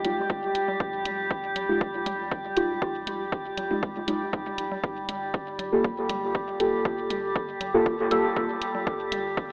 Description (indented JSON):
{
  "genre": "dub techno",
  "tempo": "119 BPM",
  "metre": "4/4",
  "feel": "straight",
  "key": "G phrygian",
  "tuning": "A4 = 440 Hz",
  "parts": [
    { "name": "deep mellow chord stab", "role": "stabs", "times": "0.0-8.3 s", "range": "Ab3 to A4", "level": "-30 LUFS", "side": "equal", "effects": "chorus, phaser, sidechain pumping, dub echo" },
    { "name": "round analog bass", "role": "bass", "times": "0.0-9.5 s", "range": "Eb1 to G1", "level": "-51 LUFS", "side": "equal", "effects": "sidechain pumping" },
    { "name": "electronic hi-hat", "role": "drums", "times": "0.0-9.2 s", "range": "none", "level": "-38 LUFS", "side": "equal", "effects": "overdrive" },
    { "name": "electronic congas and toms", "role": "percussion", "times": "0.0-9.2 s", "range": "none", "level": "-44 LUFS", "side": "equal", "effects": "sidechain pumping on perc, sidechain pumping on toms, dub echo" },
    { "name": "drifting glass-harmonics texture", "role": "texture", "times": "0.0-9.5 s", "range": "G3 to G4", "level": "-34 LUFS", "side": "equal", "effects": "chorus, built-in reverb, sidechain pumping" },
    { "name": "electronic kick drum", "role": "drums", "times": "0.3-9.5 s", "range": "none", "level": "-33 LUFS", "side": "equal", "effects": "overdrive" }
  ],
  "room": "wet huge ambient reverb, RT60 7.2 s",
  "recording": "dreamy mix soaked in reverb, telephone sound",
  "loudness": "-28 LUFS",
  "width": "mono",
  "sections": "0.0-9.5 A section",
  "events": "filter sweep on synth stab 0.0-9.5",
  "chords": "0.0 Fm9; 4.8 Gm9"
}